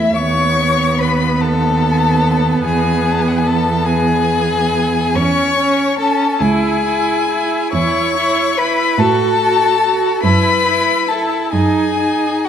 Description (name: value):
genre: classical, slow romantic movement for string quartet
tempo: 48 BPM (dotted quarters)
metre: 6/8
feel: uneven beats, rubato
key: E major, C# minor from 5.2 s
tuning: A4 = 444 Hz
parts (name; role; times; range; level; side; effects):
- rich violin; melody; 0.0-12.5 s; E5 to C#6; -18 LUFS; left 8 dB; none
- rich violin; second line; 0.0-12.5 s; E4 to C#5; -19 LUFS; left 1 dB; none
- rich viola; accompaniment; 0.0-12.5 s; A3 to F#4; -19 LUFS; right 3 dB; none
- rich cello; bass; 0.0-12.5 s; C#2 to A2; -18 LUFS; right 3 dB; none
room: moderate scoring stage reverb, RT60 1.7 s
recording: none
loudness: -13 LUFS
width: side -8 dB against mid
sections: 0.0-12.5 A section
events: none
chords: 0.2 B7/D#; 2.7 E; 5.2 C#m/E; 6.4 C#m; 7.7 C#m/E; 9.0 F#m/A; 10.2 B7sus4/F#; 11.5 D#madd11/F#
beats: | 0.16 1.42 | 2.66 3.87 | 5.17 6.41 | 7.74 8.99 | 10.24 11.54